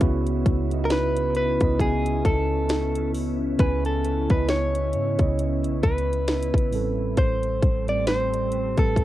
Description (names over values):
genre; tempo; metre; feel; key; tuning
contemporary R&B; 67 BPM; 4/4; swing 58% on 16ths; unclear; A4 = 440 Hz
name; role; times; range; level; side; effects
mellow tine electric piano; accompaniment; 0.0-9.0 s; A2 to G#5; -28 LUFS; right 6 dB; fast stereo tremolo, cassette tape
glassy FM pad; sustained chords; 0.0-9.0 s; C#3 to E4; -31 LUFS; left 2 dB; ensemble chorus, built-in reverb, cassette tape
clean 808-style bass; bass; 0.0-9.0 s; A1 to G#2; -27 LUFS; left 1 dB; none
trap drum kit; drums; 0.0-9.0 s; hi-hat, kick drum, snare drum; -23 LUFS; left 1 dB; none
direct-recorded clean electric guitar; melody; 0.9-9.0 s; G#4 to D5; -26 LUFS; equal; cassette tape, analog delay
room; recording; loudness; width
light reverb; home recording on cassette; -21 LUFS; side -14 dB against mid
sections
0.0-9.0 A section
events
none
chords
0.0 C#m9; 6.7 Am7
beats
| 0.01 0.91 1.80 2.70 | 3.59 4.49 5.38 6.28 | 7.18 8.07 8.97